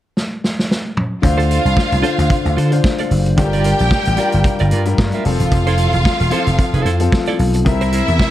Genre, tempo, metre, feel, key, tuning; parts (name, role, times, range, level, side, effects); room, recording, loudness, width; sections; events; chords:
disco; 112 BPM; 4/4; swing 56% on 16ths; A4 = 440 Hz
vintage drum kit; drums; 0.2-8.3 s; hi-hat, kick drum, snare drum, toms; -18 LUFS; equal
warm studio violin section; second line; 1.2-8.3 s; E4 to G5; -21 LUFS; equal
clean electric guitar; accompaniment; 1.2-8.2 s; E4 to E5; -24 LUFS; right 7 dB; tremolo
clear grand piano; accompaniment; 1.2-8.3 s; C3 to C5; -21 LUFS; left 6 dB
vintage slap bass; bass; 1.2-8.2 s; E1 to D3; -16 LUFS; equal
studio reverb; dark, warm production; -13 LUFS; side -13 dB against mid
0.0-1.2 A section; 1.2-8.3 B section
drum fill 0.2-1.2
0.0 N.C.; 1.2 Dm7; 3.4 Gm7; 5.3 Fmaj7; 7.7 C7